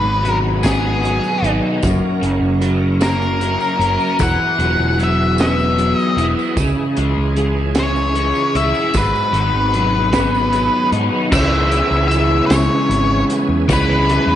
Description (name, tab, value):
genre	psychedelic rock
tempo	51 BPM (dotted quarters)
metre	6/8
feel	straight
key	unclear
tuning	A4 = 440 Hz
part	octave-fuzz lead guitar	melody	0.0-14.4 s	G#4 to F#5	-19 LUFS	left 2 dB	distortion, tape echo
part	bright tonewheel organ	sustained chords	0.0-14.4 s	E3 to A#4	-26 LUFS	right 4 dB	slow rotary speaker, chorus vibrato
part	overdriven electric guitar	riff	0.0-14.4 s	F#2 to E4	-18 LUFS	left 1 dB	rotary speaker
part	picked electric bass	bass	0.0-14.4 s	E1 to G#2	-19 LUFS	right 1 dB	none
part	crunchy breakbeat drum kit	drums	0.2-14.3 s	crash cymbal, hi-hat, kick drum, snare drum	-22 LUFS	right 1 dB	none
part	tambourine	percussion	0.6-13.9 s	none	-36 LUFS	right 17 dB	none
room	moderate plate reverb, RT60 2.0 s, small room ambience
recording	dreamy mix soaked in reverb, nothing above 10.6 kHz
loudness	-14 LUFS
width	side -11 dB against mid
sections	0.0-11.3 A section; 11.3-14.4 B section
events	none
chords	0.0 G#m7; 1.8 F#; 4.2 Eadd9; 6.6 C#m; 8.9 G#m7; 11.3 C#m7